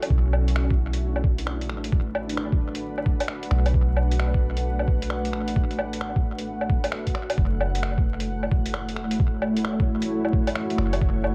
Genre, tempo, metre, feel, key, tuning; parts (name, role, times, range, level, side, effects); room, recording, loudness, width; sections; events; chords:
future garage; 132 BPM; 4/4; swing 64% on 16ths; A4 = 441 Hz
granular cloud pad; sustained chords; 0.0-11.3 s; A3 to F#5; -31 LUFS; equal; built-in reverb, sidechain pumping
soft 808-style bass; bass; 0.0-11.3 s; E1 to F#2; -28 LUFS; equal; sidechain pumping
lo-fi sampler-style drum kit; drums; 0.0-11.3 s; finger snaps, hi-hat, woodblock; -33 LUFS; equal; small room ambience, analog delay
electronic kick drum; drums; 0.1-11.1 s; -25 LUFS; equal; small room ambience
light reverb, digital ambience; echo-heavy mix, vinyl crackle; -24 LUFS; mono
0.0-11.3 A section
0.1 Bm7; 7.4 F#m7